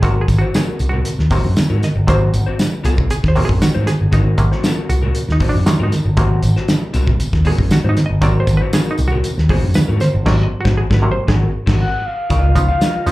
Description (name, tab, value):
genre	funk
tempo	117 BPM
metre	4/4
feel	straight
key	Ab mixolydian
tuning	A4 = 440 Hz
part	electric guitar through a small old amp	accompaniment	0.0-13.1 s	C4 to F5	-25 LUFS	left 4 dB	harmonic tremolo, slapback echo
part	muted clav	stabs	0.0-13.1 s	C3 to Eb5	-22 LUFS	right 2 dB	overdrive, slapback echo
part	picked electric bass with an envelope filter	bass	0.0-13.1 s	G1 to Ab2	-16 LUFS	equal	none
part	cloth-damped thuddy drum kit	drums	0.0-13.1 s	crash cymbal, hi-hat, kick drum, snare drum	-19 LUFS	equal	none
part	congas	percussion	0.0-10.1 s	none	-22 LUFS	right 2 dB	none
part	tambourine	percussion	0.0-13.1 s	none	-34 LUFS	left 3 dB	none
part	expressive synth lead	melody	11.8-13.1 s	F5 to Gb5	-21 LUFS	left 1 dB	chorus, slapback echo
room	moderate club reverb, RT60 0.5 s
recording	live gig heard through the venue's PA, club reverb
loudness	-13 LUFS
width	side -18 dB against mid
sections	0.0-12.3 A section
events	clav solo 0.0-12.3; band accent 10.3-12.3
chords	0.0 Ab9; 12.3 Db9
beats	| 0.03 0.54 1.06 1.57 | 2.08 2.59 3.10 3.62 | 4.13 4.64 5.15 5.66 | 6.18 6.69 7.20 7.71 | 8.22 8.73 9.24 9.75 | 10.27 10.78 11.29 11.80 | 12.31 12.82